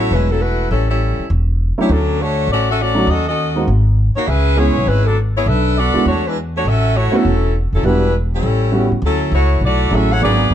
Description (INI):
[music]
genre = jazz, big band swing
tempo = 202 BPM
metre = 4/4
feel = swing 62% on 8ths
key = A major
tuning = A4 = 440 Hz
[part]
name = warm saxophone section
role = melody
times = 0.0-10.5 s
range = F#3 to F#5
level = -18 LUFS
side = left 1 dB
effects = none
[part]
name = warm grand piano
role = accompaniment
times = 0.0-10.5 s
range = F#3 to G#4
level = -19 LUFS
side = right 2 dB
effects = none
[part]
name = upright bass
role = bass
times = 0.0-10.5 s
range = E1 to A2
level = -16 LUFS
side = equal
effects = none
[sound]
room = light reverb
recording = dark, warm production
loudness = -13 LUFS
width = side -10 dB against mid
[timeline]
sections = 0.0-9.0 A section; 9.0-10.5 B section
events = none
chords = 0.0 A6; 0.7 A7; 1.9 Dmaj7; 3.1 D#m7b5; 3.7 G#5; 4.3 C#m7; 5.5 Bm7; 6.1 E7(no3); 6.6 A6; 7.8 Em7; 8.4 A13; 9.0 Dmaj9#11